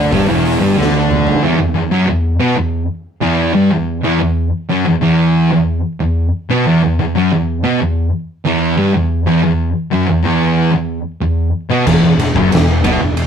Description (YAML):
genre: stoner and doom metal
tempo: 92 BPM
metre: 4/4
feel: straight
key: E minor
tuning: A4 = 440 Hz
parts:
  - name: fuzz guitar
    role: riff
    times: 0.0-13.3 s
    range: E2 to D4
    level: -14 LUFS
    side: right 4 dB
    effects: distortion
  - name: thick fuzz guitar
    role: riff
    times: 0.0-13.3 s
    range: E2 to D4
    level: -17 LUFS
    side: left 7 dB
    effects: distortion
  - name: fuzz fingered electric bass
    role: bass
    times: 0.0-1.4, 11.9-13.3 s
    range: E1 to D2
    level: -19 LUFS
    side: equal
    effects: overdrive, tube saturation
  - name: oversized low-tuned drum kit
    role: drums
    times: 0.1-1.4, 11.9-13.3 s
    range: crash cymbal, hi-hat, kick drum, ride cymbal, snare drum, toms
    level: -18 LUFS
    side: equal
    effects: none
room: moderate studio reverb, RT60 0.6 s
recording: rough rehearsal-room recording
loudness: -12 LUFS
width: side -7 dB against mid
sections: 0.0-1.4 A section; 1.4-13.3 B section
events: drum fill 0.8-1.4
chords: 0.0 Em; 1.4 E5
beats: 0.12 0.77 | 1.43 2.08 2.73 3.39 | 4.04 4.69 5.34 6.00 | 6.65 7.30 7.95 8.61 | 9.26 9.91 10.56 11.21 | 11.87 12.52 13.17